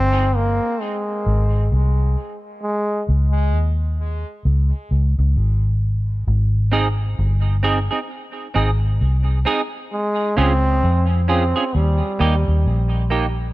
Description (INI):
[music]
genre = dub reggae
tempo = 66 BPM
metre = 4/4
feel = swing 60% on 16ths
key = Ab major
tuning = A4 = 439 Hz
[part]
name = bright trombone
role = melody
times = 0.0-3.0, 9.9-13.1 s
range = G3 to C4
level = -23 LUFS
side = equal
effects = tape echo
[part]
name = vintage muted fingered electric bass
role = bass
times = 0.0-13.5 s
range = G1 to F2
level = -17 LUFS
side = equal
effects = none
[part]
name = semi-hollow electric guitar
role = accompaniment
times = 6.7-13.3 s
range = Bb3 to Ab4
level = -24 LUFS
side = right 4 dB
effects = analog chorus, tape echo
[sound]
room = studio reverb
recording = none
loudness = -17 LUFS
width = side -18 dB against mid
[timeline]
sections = 0.0-13.5 A section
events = break 0.0-6.3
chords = 0.0 Ab; 2.6 Db5; 6.3 Ab; 9.9 Db; 11.7 Eb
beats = 0.80 1.71 | 2.62 3.53 4.44 5.35 | 6.26 7.17 8.09 9.00 | 9.91 10.82 11.73 12.64